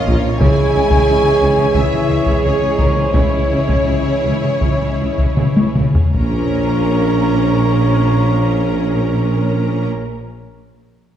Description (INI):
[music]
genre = cinematic, epic orchestral film score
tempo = 76-90 BPM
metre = 4/4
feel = straight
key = unclear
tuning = A4 = 440 Hz
[part]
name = rich symphonic violin section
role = melody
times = 0.0-9.9 s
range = Bb4 to Bb5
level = -27 LUFS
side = left 3 dB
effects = none
[part]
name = warm symphonic violin section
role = second line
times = 0.0-9.8 s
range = Bb4 to Bb5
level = -27 LUFS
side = left 2 dB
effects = none
[part]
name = rich symphonic viola section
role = accompaniment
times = 0.0-9.9 s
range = Db4 to Bb4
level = -25 LUFS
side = right 1 dB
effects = none
[part]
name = bright trombone section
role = sustained chords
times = 0.0-9.9 s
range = Fb3 to Bb3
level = -26 LUFS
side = right 3 dB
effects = none
[part]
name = warm French horn section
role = sustained chords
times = 0.0-9.9 s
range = Bb3 to Ab4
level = -22 LUFS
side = right 1 dB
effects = none
[part]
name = warm symphonic string section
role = sustained chords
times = 0.0-9.9 s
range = Db4 to F5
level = -28 LUFS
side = left 1 dB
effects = none
[part]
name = mellow trumpet section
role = stabs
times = 0.0-9.9 s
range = Db5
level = -24 LUFS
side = equal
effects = none
[part]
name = mellow tuba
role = bass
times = 0.1-9.9 s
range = Bb1 to Db2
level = -21 LUFS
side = right 1 dB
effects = none
[part]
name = rich symphonic cello section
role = bass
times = 0.1-9.9 s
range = Bb2 to Db3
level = -23 LUFS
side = right 1 dB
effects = none
[part]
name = rich symphonic double bass section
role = bass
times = 0.1-9.9 s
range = Bb1 to Db2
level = -22 LUFS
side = right 2 dB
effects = none
[part]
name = solo taiko drums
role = drums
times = 0.1-7.7 s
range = none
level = -17 LUFS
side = left 1 dB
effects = none
[part]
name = timpani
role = percussion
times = 6.2-9.9 s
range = none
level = barely audible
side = none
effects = none
[sound]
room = wet scoring stage reverb, RT60 1.6 s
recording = heard from further back in the room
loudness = -13 LUFS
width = side -10 dB against mid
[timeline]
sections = 0.0-6.2 A section; 6.2-9.3 B section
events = slowing down 0.0-6.2; drum fill 5.4-6.2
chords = 0.4 Dbm; 6.2 Bbm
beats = | 0.41 1.08 1.75 2.44 | 3.15 3.88 4.62 5.38 | 6.15 6.93 7.70 8.48